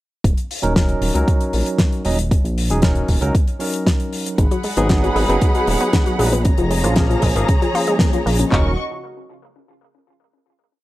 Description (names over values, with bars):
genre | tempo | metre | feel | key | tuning
nu-disco, nu disco | 116 BPM | 4/4 | straight | Eb minor | A4 = 440 Hz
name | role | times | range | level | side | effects
fat analog bass | bass | 0.2-8.8 s | Eb1 to Db2 | -20 LUFS | equal | none
damped 70s drum kit | drums | 0.2-8.5 s | hi-hat, snare drum | -23 LUFS | left 1 dB | studio reverb
pop drum kit | drums | 0.2-8.6 s | handclaps, kick drum, toms | -17 LUFS | equal | studio reverb
barky tine electric piano | accompaniment | 0.6-8.7 s | F3 to Eb5 | -22 LUFS | right 1 dB | medium stereo tremolo, sidechain pumping, low-pass filter, analog delay
muted studio string section | sustained chords | 4.4-8.8 s | Gb4 to Db6 | -24 LUFS | right 1 dB | sidechain pumping
analog pluck | arpeggios | 4.4-8.8 s | Db3 to F4 | -23 LUFS | left 2 dB | chorus, sidechain pumping, tape echo
room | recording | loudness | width
small room ambience | dry, gritty hardware recording | -15 LUFS | side -16 dB against mid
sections
0.2-8.5 groove; 8.5-10.6 final chord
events
filter sweep on tine electric piano 0.2-8.5; band accent 8.0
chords
0.2 Ebm7; 4.4 Abm7; 6.5 Bbm7; 8.5 Ebm7